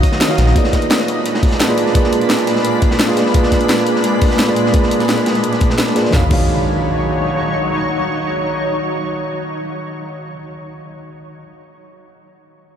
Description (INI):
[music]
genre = liquid drum and bass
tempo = 172 BPM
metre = 4/4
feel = straight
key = unclear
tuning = A4 = 440 Hz
[part]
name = bell-like tine electric piano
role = accompaniment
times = 0.0-11.4 s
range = Eb3 to F5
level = -19 LUFS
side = right 1 dB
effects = low-pass filter, analog delay
[part]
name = shimmering ambient pad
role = sustained chords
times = 0.0-9.7 s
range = Bb2 to Cb6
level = -20 LUFS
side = equal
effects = chorus, built-in reverb, sidechain pumping
[part]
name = crunchy breakbeat drum kit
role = drums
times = 0.0-6.1 s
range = hi-hat, snare drum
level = -23 LUFS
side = equal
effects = high-pass filter on hats, high-pass filter on snare, high-pass filter on room
[part]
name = electronic kick drum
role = drums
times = 0.0-6.4 s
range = none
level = -15 LUFS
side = equal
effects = none
[part]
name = garage drum kit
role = drums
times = 0.0-6.4 s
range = crash cymbal, hi-hat, snare drum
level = -21 LUFS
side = equal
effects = none
[part]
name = sub bass with octave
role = bass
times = 0.4-0.5 s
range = Bb1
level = -13 LUFS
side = equal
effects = tube saturation
[part]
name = impact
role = sound effects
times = 6.1-10.2 s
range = none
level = -23 LUFS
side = equal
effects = none
[sound]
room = wet huge ambient reverb, RT60 7.1 s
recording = dreamy mix soaked in reverb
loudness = -13 LUFS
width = side -8 dB against mid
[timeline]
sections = 0.0-6.1 A section; 6.1-8.9 B section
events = filter sweep on tine electric piano 0.0-6.1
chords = 0.0 Ebm7; 0.6 Bb7b9; 6.1 Ebm7